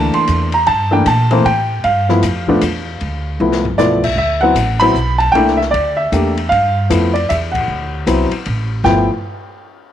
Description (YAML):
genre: jazz piano trio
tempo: 154 BPM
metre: 3/4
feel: swing 64% on 8ths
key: G mixolydian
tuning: A4 = 440 Hz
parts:
  - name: warm baby grand piano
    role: melody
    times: 0.0-9.1 s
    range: E3 to C6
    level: -14 LUFS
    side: equal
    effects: none
  - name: upright bass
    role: bass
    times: 0.0-9.1 s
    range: G1 to Bb2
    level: -19 LUFS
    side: right 1 dB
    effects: none
  - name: open jazz drum kit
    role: drums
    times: 0.1-9.0 s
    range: crash cymbal, hi-hat, kick drum, ride cymbal, snare drum, toms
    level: -25 LUFS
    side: left 7 dB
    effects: none
room: light reverb, studio reverb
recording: 1960s-style stereo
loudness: -12 LUFS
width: side -10 dB against mid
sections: 0.0-8.8 A section; 8.8-9.9 B section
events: drum fill 3.4-3.8; band accent 7.5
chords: 0.0 C13; 1.8 G13; 4.2 D13; 5.3 C13; 6.5 G7(no3); 7.7 D7; 8.8 G9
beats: 0.29 | 0.68 1.06 1.45 | 1.84 2.23 2.62 | 3.01 3.39 3.78 | 4.17 4.56 4.95 | 5.34 5.73 6.12 | 6.51 6.90 7.29 | 7.68 8.06 8.45 | 8.84